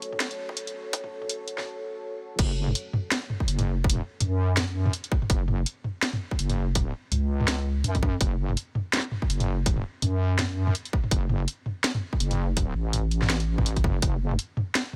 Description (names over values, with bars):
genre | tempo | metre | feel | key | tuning
half-time drum and bass | 165 BPM | 4/4 | swing 58% on 16ths, half-time | F# minor | A4 = 440 Hz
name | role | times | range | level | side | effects
dark analog pad | sustained chords | 0.0-2.4 s | F#4 to C#5 | -39 LUFS | equal | chorus, sidechain pumping
drum and bass drum kit | drums | 0.0-15.0 s | crash cymbal, hi-hat, snare drum, toms | -30 LUFS | equal | none
electronic kick drum | drums | 0.5-14.1 s | none | -27 LUFS | equal | overdrive, high-pass filter on kick, high-pass filter on room
deep soft wobble bass | bass | 2.4-14.4 s | F#1 to F#2 | -28 LUFS | equal | chorus
room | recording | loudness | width
little or no reverb | high-pass filter | -27 LUFS | mono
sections
0.0-2.4 A section; 2.4-15.0 B section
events
build-up 0.0-2.4; break 1.7-2.4; drop 2.4-15.0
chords
0.0 F#m; 2.4 N.C.